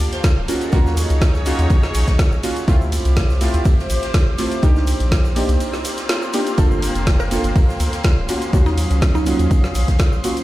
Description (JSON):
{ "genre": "deep house", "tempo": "123 BPM", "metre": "4/4", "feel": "swing 53% on 16ths", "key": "unclear", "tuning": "A4 = 444 Hz", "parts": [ { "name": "clean electric guitar", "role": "melody", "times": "0.0-1.1 s", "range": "Bb4 to D5", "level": "-33 LUFS", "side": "equal", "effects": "wide subtle chorus, tape echo" }, { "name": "warbly tape-like pad", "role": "sustained chords", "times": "0.0-10.4 s", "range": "Gb3 to Eb6", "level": "-30 LUFS", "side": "right 2 dB", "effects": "chorus, built-in reverb, sidechain pumping" }, { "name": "deep mellow chord stab", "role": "stabs", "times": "0.0-10.3 s", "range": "A3 to A4", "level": "-24 LUFS", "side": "right 1 dB", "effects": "chorus, cassette tape, sidechain pumping, tape echo" }, { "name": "round analog bass", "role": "bass", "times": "0.0-10.2 s", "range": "D1 to Eb2", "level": "-19 LUFS", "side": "equal", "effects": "tube saturation, sidechain pumping" }, { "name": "deep house drum kit", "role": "drums", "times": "0.0-10.4 s", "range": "hi-hat, ride cymbal, snare drum", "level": "-26 LUFS", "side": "equal", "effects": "none" }, { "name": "soft-mallet drum kit", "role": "drums", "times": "0.0-10.4 s", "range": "hi-hat, snare drum", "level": "-35 LUFS", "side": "right 2 dB", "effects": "sidechain pumping on hats, high-pass filter on hats, high-pass filter on snare, high-pass filter on room" }, { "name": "clear studio string section", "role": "texture", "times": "0.0-10.4 s", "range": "Gb3 to D6", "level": "-28 LUFS", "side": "left 1 dB", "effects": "sidechain pumping" }, { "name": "egg shaker", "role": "percussion", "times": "0.1-10.4 s", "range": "none", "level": "-37 LUFS", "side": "right 1 dB", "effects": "none" }, { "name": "electronic kick drum", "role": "drums", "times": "0.2-10.1 s", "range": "none", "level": "-15 LUFS", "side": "equal", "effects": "none" }, { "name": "dark studio violin section", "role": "texture", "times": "6.6-10.4 s", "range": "C5 to C6", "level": "-34 LUFS", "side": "left 1 dB", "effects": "sidechain pumping" }, { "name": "mallet-like synth pluck", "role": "melody", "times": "7.2-9.6 s", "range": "Eb4 to Bb4", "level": "-28 LUFS", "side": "right 1 dB", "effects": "chorus, phaser, tape echo" } ], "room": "little or no reverb", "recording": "played on a big sound system in a bare room, stone room reverb", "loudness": "-15 LUFS", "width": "side -16 dB against mid", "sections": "0.0-10.4 A section", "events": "break 5.6-6.6", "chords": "0.5 Ebm9; 2.7 Dm9; 4.6 Cm9; 6.6 Gm9; 8.3 Ebm9" }